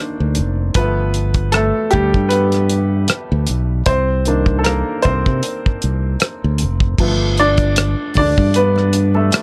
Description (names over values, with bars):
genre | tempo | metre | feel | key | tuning
R&B, neo-soul | 77 BPM | 4/4 | swing 54% on 16ths | unclear | A4 = 440 Hz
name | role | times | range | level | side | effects
clear grand piano | accompaniment | 0.0-9.4 s | Eb3 to D5 | -21 LUFS | equal | none
modern bright fingered electric bass | bass | 0.2-9.3 s | F1 to C3 | -19 LUFS | equal | none
cloth-damped thuddy drum kit | drums | 0.3-9.4 s | crash cymbal, hi-hat, kick drum, rim click | -20 LUFS | equal | none
congas | percussion | 7.0-9.4 s | none | -32 LUFS | equal | none
room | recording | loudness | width
light reverb | none | -16 LUFS | mono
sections
0.0-7.0 A section; 7.0-9.4 B section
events
grand piano solo 0.0-7.0, 7.0-9.4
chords
0.0 Cm7; 0.8 G9; 3.9 Cm7; 7.0 G9